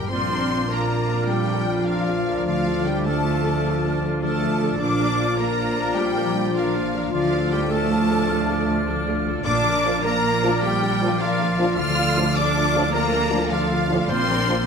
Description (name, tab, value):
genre	cinematic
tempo	103 BPM (dotted quarters)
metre	12/8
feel	straight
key	Bb major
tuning	A4 = 439 Hz
part	warm symphonic violin section	melody	0.0-14.7 s	F5 to F6	-29 LUFS	left 4 dB	none
part	rich studio violin section	second line	0.0-14.7 s	F5 to F6	-30 LUFS	left 1 dB	none
part	warm clarinet	second line	0.0-14.7 s	F4 to F5	-30 LUFS	equal	none
part	clear symphonic viola section	accompaniment	0.0-14.7 s	A3 to Bb4	-30 LUFS	right 1 dB	none
part	concert harp	arpeggios	0.0-14.7 s	G2 to F5	-30 LUFS	left 10 dB	none
part	rich symphonic cello section	bass	0.0-14.7 s	F3 to F4	-27 LUFS	right 3 dB	none
part	timpani	percussion	0.0-0.1, 9.5-10.0, 14.1-14.6 s	G2 to Bb2	-32 LUFS	equal	none
part	bright flute section	second line	0.1-14.7 s	F6	-33 LUFS	equal	none
part	warm oboe	second line	0.1-14.6 s	D5	-32 LUFS	right 2 dB	none
part	dark French horn section	sustained chords	0.1-14.5 s	D4 to F4	-28 LUFS	left 4 dB	none
part	dark trombone section	sustained chords	0.1-14.6 s	F2 to F3	-30 LUFS	right 2 dB	none
part	warm symphonic double bass section	bass	0.1-14.7 s	Bb1 to D2	-27 LUFS	right 5 dB	none
room	moderate scoring stage reverb, RT60 1.7 s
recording	none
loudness	-19 LUFS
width	side -6 dB against mid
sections	0.1-14.7 A section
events	none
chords	0.1 Bb; 2.5 Dm; 4.8 Bb; 7.1 Dm; 9.5 Bb; 11.8 Dm; 14.1 Bb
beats	| 0.11 0.70 1.29 1.88 | 2.46 3.05 3.64 4.22 | 4.80 5.39 5.97 6.56 | 7.14 7.72 8.30 8.88 | 9.46 10.04 10.62 11.20 | 11.78 12.36 12.94 13.52 | 14.09